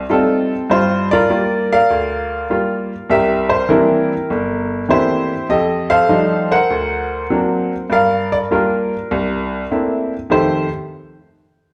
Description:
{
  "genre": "solo jazz",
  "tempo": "100 BPM",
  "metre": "4/4",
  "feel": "swing 67% on 8ths",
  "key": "F major",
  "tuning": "A4 = 437 Hz",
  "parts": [
    { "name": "bright upright piano", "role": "solo", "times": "0.0-10.7 s", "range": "G1 to Gb5", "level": "-17 LUFS", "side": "equal", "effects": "none" }
  ],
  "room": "wet large studio reverb, RT60 1.3 s",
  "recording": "band playing live in one room",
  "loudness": "-17 LUFS",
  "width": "mono",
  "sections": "0.0-10.3 A section; 10.3-11.7 B section",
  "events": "none",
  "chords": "0.0 F13; 0.7 Gm7; 3.1 C13; 5.5 F13; 6.7 Daug7; 7.9 Gm7; 9.1 C13; 10.3 F9"
}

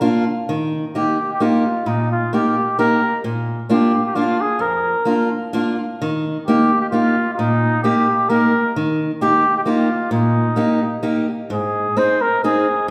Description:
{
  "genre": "alpine folk, alpine dance band",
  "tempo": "131 BPM",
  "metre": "3/4",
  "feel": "swing 53% on 8ths",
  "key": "Eb major",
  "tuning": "A4 = 440 Hz",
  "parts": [
    { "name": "fingerpicked steel-string acoustic guitar", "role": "accompaniment", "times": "0.0-12.9 s", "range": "F2 to Ab4", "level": "-20 LUFS", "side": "equal", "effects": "none" },
    { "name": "clear flugelhorn", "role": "melody", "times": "1.0-12.9 s", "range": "Eb4 to C5", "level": "-22 LUFS", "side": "equal", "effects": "none" }
  ],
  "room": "wet recital hall reverb, RT60 1.6 s",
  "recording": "heard from further back in the room",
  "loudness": "-18 LUFS",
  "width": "mono",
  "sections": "0.5-11.5 A section; 11.5-12.9 B section",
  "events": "none",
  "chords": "0.5 Eb; 3.2 Bb; 6.0 Eb; 11.5 Ab"
}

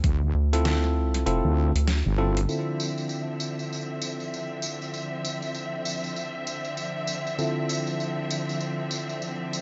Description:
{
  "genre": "glitch hop",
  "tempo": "98 BPM",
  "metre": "4/4",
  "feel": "swing 61% on 16ths",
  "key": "D minor",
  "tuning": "A4 = 440 Hz",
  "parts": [
    { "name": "wobble bass", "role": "bass", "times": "0.0-2.5 s", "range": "G1 to D2", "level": "-25 LUFS", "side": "equal", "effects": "chorus" },
    { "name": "dubstep drum kit", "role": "drums", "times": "0.0-2.5 s", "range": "hi-hat, snare drum", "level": "-33 LUFS", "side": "equal", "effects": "overdrive, small room ambience" },
    { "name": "rubbery square bass", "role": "bass", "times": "0.3-2.0 s", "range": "F1 to D2", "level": "-26 LUFS", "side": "equal", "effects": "none" },
    { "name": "bell-like tine electric piano", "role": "stabs", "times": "0.5-9.6 s", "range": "D3 to A4", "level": "-33 LUFS", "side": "equal", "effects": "sidechain pumping, low-pass filter, digital delay" },
    { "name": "bright symphonic string section", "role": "sustained chords", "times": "2.5-9.6 s", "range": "D3 to E5", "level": "-34 LUFS", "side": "equal", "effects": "vintage 12-bit sampler grit, sidechain pumping, low-pass filter" },
    { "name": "tambourine", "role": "percussion", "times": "2.5-9.6 s", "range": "none", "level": "-37 LUFS", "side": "equal", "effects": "none" }
  ],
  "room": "light reverb, digital ambience",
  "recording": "nothing above 7.9 kHz",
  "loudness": "-28 LUFS",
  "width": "mono",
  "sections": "0.0-2.5 A section; 2.5-9.6 B section",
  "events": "none",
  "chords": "0.0 Dm9"
}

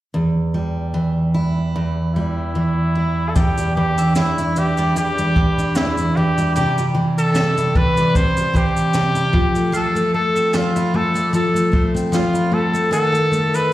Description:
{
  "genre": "acoustic pop",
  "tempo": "75 BPM",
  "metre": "4/4",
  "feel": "swing 55% on 16ths",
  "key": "unclear",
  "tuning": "A4 = 440 Hz",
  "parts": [
    { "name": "picked steel-string acoustic guitar", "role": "accompaniment", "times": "0.1-13.7 s", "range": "E2 to E4", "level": "-18 LUFS", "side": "equal", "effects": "none" },
    { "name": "clear trumpet", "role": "melody", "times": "2.1-13.7 s", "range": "E4 to C5", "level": "-20 LUFS", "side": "equal", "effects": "plate reverb, slapback echo" },
    { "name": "mandolin", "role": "arpeggios", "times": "3.4-13.7 s", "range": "B4 to G5", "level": "-32 LUFS", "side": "right 1 dB", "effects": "plate reverb, slapback echo, digital delay" },
    { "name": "jazz brush drum kit", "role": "drums", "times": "3.4-13.7 s", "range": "kick drum, shaker, snare drum", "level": "-22 LUFS", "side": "equal", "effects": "none" }
  ],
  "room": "light reverb",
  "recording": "live gig heard through the venue's PA, recital hall reverb",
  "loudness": "-16 LUFS",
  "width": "side -15 dB against mid",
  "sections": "0.2-3.4 A section; 3.4-13.7 B section",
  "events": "none",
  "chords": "0.2 Em; 3.4 Em7; 6.5 C; 9.3 Fmaj7; 12.9 B7/D#"
}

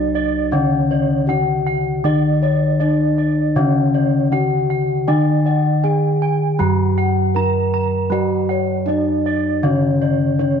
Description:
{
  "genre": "gamelan",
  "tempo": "79 BPM",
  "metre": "4/4",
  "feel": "straight",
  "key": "unclear",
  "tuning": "A4 = 440 Hz",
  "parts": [
    { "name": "gamelan-type bronze metallophone", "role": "melody", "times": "0.0-10.6 s", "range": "C#4 to A#4+20c", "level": "-21 LUFS", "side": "left 2 dB", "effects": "none" },
    { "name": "gamelan-type bronze metallophone", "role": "accompaniment", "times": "0.0-10.6 s", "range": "C#3 to F#3+30c", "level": "-20 LUFS", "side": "equal", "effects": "none" },
    { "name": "gamelan-type bossed gongs", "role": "arpeggios", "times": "0.0-10.6 s", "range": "C#5 to A#5+20c", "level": "-25 LUFS", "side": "left 8 dB", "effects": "none" },
    { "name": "gamelan-type bronze metallophone", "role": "arpeggios", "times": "0.0-10.6 s", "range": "C#5 to A#5+20c", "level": "-25 LUFS", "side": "right 10 dB", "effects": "none" },
    { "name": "gamelan-type bossed gongs", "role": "bass", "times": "0.0-10.6 s", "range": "C#2 to F#4+30c", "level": "-23 LUFS", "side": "equal", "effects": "none" }
  ],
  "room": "moderate echo chamber reverb, RT60 2.4 s",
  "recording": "1960s-style stereo with parts hard left and right",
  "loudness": "-15 LUFS",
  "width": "side -7 dB against mid",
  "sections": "0.0-10.6 A section",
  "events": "none",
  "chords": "none"
}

